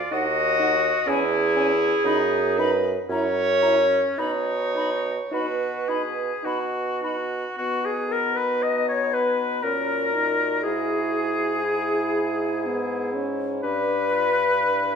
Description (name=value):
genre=classical, slow romantic movement for wind quintet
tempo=51-63 BPM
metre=3/4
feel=rubato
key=B major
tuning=A4 = 440 Hz
part: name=warm oboe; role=second line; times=0.0-15.0 s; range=C#4 to D#5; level=-26 LUFS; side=left 2 dB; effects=none
part: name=warm clarinet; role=accompaniment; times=0.0-15.0 s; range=D#4 to D#5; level=-26 LUFS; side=right 1 dB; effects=none
part: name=hollow concert flute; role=melody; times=0.1-15.0 s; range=F#4 to B5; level=-29 LUFS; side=left 4 dB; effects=none
part: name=clear French horn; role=accompaniment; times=0.1-15.0 s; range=B3 to E4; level=-30 LUFS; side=right 1 dB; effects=none
part: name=warm bassoon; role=bass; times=0.1-15.0 s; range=D#2 to B2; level=-28 LUFS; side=right 3 dB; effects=none
room=wet stone room reverb, RT60 1.2 s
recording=minimal, uncompressed stereo recording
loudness=-21 LUFS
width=side -6 dB against mid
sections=0.0-7.6 A section; 7.6-15.0 B section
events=none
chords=0.1 D#m; 1.1 C#m/E; 2.1 B/F#; 3.1 F#7; 4.2 B; 10.6 E/G#; 13.6 G7